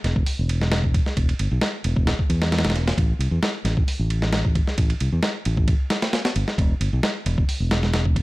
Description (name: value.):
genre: breakbeat, breaks.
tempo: 133 BPM.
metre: 4/4.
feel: swing 53% on 16ths.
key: unclear.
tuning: A4 = 440 Hz.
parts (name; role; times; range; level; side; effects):
fingered electric bass; bass; 0.0-8.2 s; E1 to E2; -22 LUFS; equal; none.
dusty soul sampler-style drum kit; drums; 0.0-8.2 s; hi-hat, kick drum, ride cymbal, snare drum; -22 LUFS; equal; studio reverb.
room: digital ambience.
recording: vinyl crackle.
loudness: -20 LUFS.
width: side -20 dB against mid.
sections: 0.0-8.2 A section.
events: none.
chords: none.